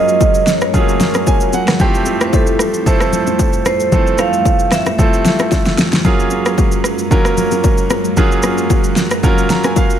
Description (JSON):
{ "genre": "amapiano", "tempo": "113 BPM", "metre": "4/4", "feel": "swing 55% on 16ths", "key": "unclear", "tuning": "A4 = 440 Hz", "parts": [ { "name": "vibraphone with medium hard mallets", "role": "melody", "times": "0.0-5.7 s", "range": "A4 to F5", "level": "-18 LUFS", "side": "right 2 dB", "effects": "ping-pong delay" }, { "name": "bright concert grand piano", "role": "accompaniment", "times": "0.0-10.0 s", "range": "E3 to A#5", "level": "-17 LUFS", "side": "right 3 dB", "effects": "none" }, { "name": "string machine, cellos", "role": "sustained chords", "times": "0.0-10.0 s", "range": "F2 to A#4", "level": "-22 LUFS", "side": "equal", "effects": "ensemble chorus" }, { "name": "deep house drum kit", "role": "drums", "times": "0.1-10.0 s", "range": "kick drum, rim click, shaker, snare drum", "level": "-15 LUFS", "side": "equal", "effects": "overdrive" }, { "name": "bongos and congas", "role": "percussion", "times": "0.2-9.9 s", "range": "none", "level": "-21 LUFS", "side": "left 6 dB", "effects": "none" } ], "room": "light reverb, small room ambience", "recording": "faint mains hum", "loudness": "-11 LUFS", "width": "side -10 dB against mid", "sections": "0.0-10.0 A section", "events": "grand piano fill 1.0-1.8, 9.2-10.0; drum fill 5.5-6.0", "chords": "0.0 F#maj9; 1.8 Fmaj9; 6.0 F#maj9" }